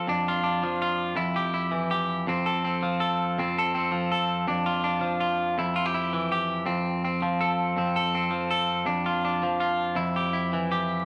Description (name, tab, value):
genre	highlife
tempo	109 BPM (dotted quarters)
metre	12/8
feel	straight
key	F major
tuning	A4 = 440 Hz
part	clean electric guitar	solo	0.0-11.1 s	F2 to A4	-26 LUFS	equal	none
room	wet large studio reverb, RT60 1.5 s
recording	vinyl crackle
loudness	-26 LUFS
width	mono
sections	0.0-11.1 A section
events	none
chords	0.1 Dm/F; 1.2 Em; 2.3 F; 4.5 Dm/F; 5.6 Em; 6.7 F; 8.9 Dm/F; 10.0 Em